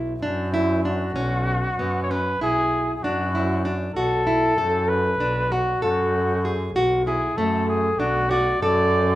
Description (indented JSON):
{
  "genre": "contemporary instrumental, chamber music in an uneven meter",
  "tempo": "193 BPM (eighths)",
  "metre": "9/8",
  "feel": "straight",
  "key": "B dorian",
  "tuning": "A4 = 440 Hz",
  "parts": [
    { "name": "nylon-string guitar", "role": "arpeggios", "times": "0.0-9.1 s", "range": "A3 to A4", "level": "-24 LUFS", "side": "equal", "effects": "none" },
    { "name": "clear double bass", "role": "bass", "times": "0.0-9.2 s", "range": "B1 to F#2", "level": "-26 LUFS", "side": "equal", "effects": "none" },
    { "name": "clear flugelhorn", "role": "melody", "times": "0.9-9.2 s", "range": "F#4 to D5", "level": "-24 LUFS", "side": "equal", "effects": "none" }
  ],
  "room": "moderate recital hall reverb, RT60 1.3 s",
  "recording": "none",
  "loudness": "-20 LUFS",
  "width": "side -15 dB against mid",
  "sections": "0.0-4.0 A section; 4.0-9.2 B section",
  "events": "none",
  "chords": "0.0 Bmadd9; 4.0 B7(no3)"
}